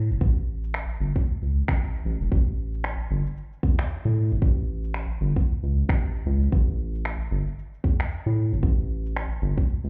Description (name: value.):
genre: organic downtempo.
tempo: 114 BPM.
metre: 4/4.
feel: swing 59% on 16ths.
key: unclear.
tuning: A4 = 440 Hz.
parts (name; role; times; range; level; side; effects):
round analog bass; bass; 0.0-9.9 s; E1 to A2; -26 LUFS; equal; sidechain pumping.
electronic shaker and finger snaps; drums; 0.1-9.9 s; none; -36 LUFS; equal; overdrive.
electronic kick drum; drums; 0.2-9.7 s; none; -24 LUFS; equal; none.
room: digital ambience.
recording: heard muffled through a wall, club reverb, EQ.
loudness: -25 LUFS.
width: mono.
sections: 0.0-9.9 A section.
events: none.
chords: none.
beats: | 0.21 0.74 1.26 1.79 | 2.31 2.84 3.37 3.89 | 4.42 4.95 5.47 6.00 | 6.53 7.05 7.58 8.11 | 8.63 9.16 9.68.